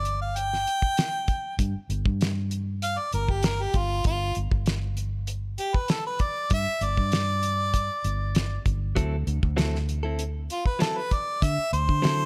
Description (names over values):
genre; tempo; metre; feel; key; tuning
straight-eighth soul blues; 98 BPM; 4/4; straight; G mixolydian; A4 = 441 Hz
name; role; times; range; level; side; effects
clear harmonica; melody; 0.0-12.3 s; F4 to G5; -30 LUFS; equal; overdrive
vintage muted fingered electric bass; bass; 0.0-12.3 s; G1 to D3; -30 LUFS; equal; none
damped 70s drum kit; drums; 0.1-12.2 s; hi-hat, kick drum, snare drum; -28 LUFS; equal; none
direct-recorded clean electric guitar; stabs; 9.0-12.2 s; F#3 to A4; -34 LUFS; equal; none
room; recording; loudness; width
studio reverb; none; -26 LUFS; mono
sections
0.0-12.3 A section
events
harmonica solo 0.0-12.3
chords
0.0 G5; 9.0 D9